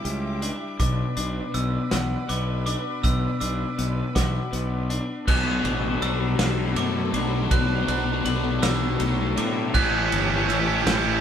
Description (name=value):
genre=post-rock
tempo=54 BPM (dotted quarters)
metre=6/8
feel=straight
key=B minor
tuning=A4 = 445 Hz
part: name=clear symphonic string section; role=sustained chords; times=0.0-11.2 s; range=G4 to D6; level=-35 LUFS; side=right 1 dB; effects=none
part: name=glockenspiel with brass mallets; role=arpeggios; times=0.0-11.2 s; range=D6 to F#6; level=-32 LUFS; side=right 3 dB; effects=none
part: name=twelve-string electric guitar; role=arpeggios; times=0.0-9.7 s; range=B2 to D5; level=-30 LUFS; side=left 3 dB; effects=none
part: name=fuzz fingered electric bass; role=bass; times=0.0-11.2 s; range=G1 to A2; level=-27 LUFS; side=equal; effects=overdrive
part: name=loose indie drum kit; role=drums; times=0.1-11.0 s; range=crash cymbal, hi-hat, kick drum, ride cymbal, snare drum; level=-27 LUFS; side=right 1 dB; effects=none
part: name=overdriven electric guitar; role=riff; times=5.3-11.2 s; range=A2 to F#3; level=-26 LUFS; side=left 4 dB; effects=phaser
part: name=overdriven semi-hollow guitar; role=riff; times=9.7-11.2 s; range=C#4 to G4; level=-23 LUFS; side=right 8 dB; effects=none
room=moderate stone room reverb, RT60 1.0 s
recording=band playing live in one room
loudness=-21 LUFS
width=side -9 dB against mid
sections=0.0-5.3 A section; 5.3-11.2 B section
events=build-up 5.3-11.2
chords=0.0 Em7; 0.8 Bm; 5.3 Bm7; 9.8 A7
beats=| 0.80 1.92 | 3.04 4.16 | 5.28 6.39 | 7.51 8.63 | 9.75 10.87